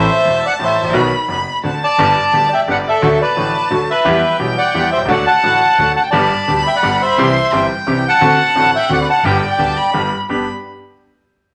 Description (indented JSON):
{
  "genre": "tango",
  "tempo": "173 BPM",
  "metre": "3/4",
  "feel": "rubato",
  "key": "G major",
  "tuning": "A4 = 440 Hz",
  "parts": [
    { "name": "bandoneon", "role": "melody", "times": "0.0-9.9 s", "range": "A4 to A5", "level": "-16 LUFS", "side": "equal", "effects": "none" },
    { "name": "warm violin", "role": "second line", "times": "0.0-10.5 s", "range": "D5 to C6", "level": "-24 LUFS", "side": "equal", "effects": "none" },
    { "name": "bright concert grand piano", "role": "accompaniment", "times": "0.0-10.4 s", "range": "E1 to G4", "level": "-20 LUFS", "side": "equal", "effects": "none" },
    { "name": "warm studio string section", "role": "stabs", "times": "0.0-10.4 s", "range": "A3 to G4", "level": "-31 LUFS", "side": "equal", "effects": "none" },
    { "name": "upright bass", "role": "bass", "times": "0.0-10.4 s", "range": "E1 to E2", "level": "-29 LUFS", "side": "equal", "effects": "none" }
  ],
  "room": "moderate large studio reverb, RT60 1.0 s",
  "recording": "none",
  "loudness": "-14 LUFS",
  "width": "mono",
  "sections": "0.0-2.0 A section; 2.0-10.3 B section; 10.3-11.3 C section",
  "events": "none",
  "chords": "0.0 Am; 0.9 B; 1.6 D7; 2.0 G; 3.0 D; 4.0 Em; 5.1 D; 6.1 G; 7.2 C; 8.2 D7; 9.2 G"
}